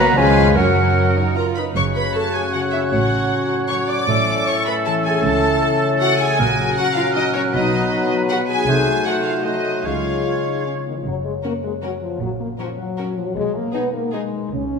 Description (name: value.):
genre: cinematic, playful, whimsical film cue.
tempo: 155 BPM.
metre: 3/4.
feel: straight.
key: F# minor, F# major from 6.4 s.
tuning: A4 = 440 Hz.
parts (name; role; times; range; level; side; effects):
clear studio violin section; melody; 0.0-14.2 s; G#4 to D6; -25 LUFS; left 2 dB; none.
clear oboe; second line; 0.0-10.9 s; A4 to C#5; -27 LUFS; right 2 dB; none.
dark clarinet; second line; 0.0-11.0 s; B3 to C#5; -29 LUFS; left 1 dB; none.
rich studio violin section; second line; 0.0-14.2 s; D#4 to D6; -29 LUFS; equal; none.
silver concert flute; second line; 0.0-10.9 s; F#5 to G#6; -26 LUFS; left 1 dB; none.
rich studio viola section; accompaniment; 0.0-14.2 s; B3 to D5; -26 LUFS; right 2 dB; none.
warm bassoon; accompaniment; 0.0-10.9 s; C#3 to A3; -26 LUFS; right 2 dB; none.
mellow French horn section; sustained chords; 0.0-14.8 s; D#3 to G#4; -24 LUFS; left 3 dB; none.
concert harp; arpeggios; 0.0-14.8 s; F#2 to G#4; -26 LUFS; left 6 dB; none.
warm studio cello section; bass; 0.0-14.8 s; C#2 to A#3; -28 LUFS; right 4 dB; none.
warm studio double bass section; bass; 0.0-14.8 s; F#1 to F#2; -24 LUFS; right 5 dB; none.
room: wet scoring stage reverb, RT60 1.9 s.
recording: minimal, uncompressed stereo recording.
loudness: -17 LUFS.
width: side -5 dB against mid.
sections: 0.0-1.8 A section; 1.8-11.1 B section; 11.1-14.8 C section.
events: none.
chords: 0.2 C#7; 0.6 F#; 1.8 F#m; 2.9 F#m/A; 4.1 A; 5.2 A/C#; 6.4 F#/A#; 7.5 B; 8.7 Cdim7; 9.9 C#; 11.1 F#; 12.2 F#/A#; 13.4 G#m/B.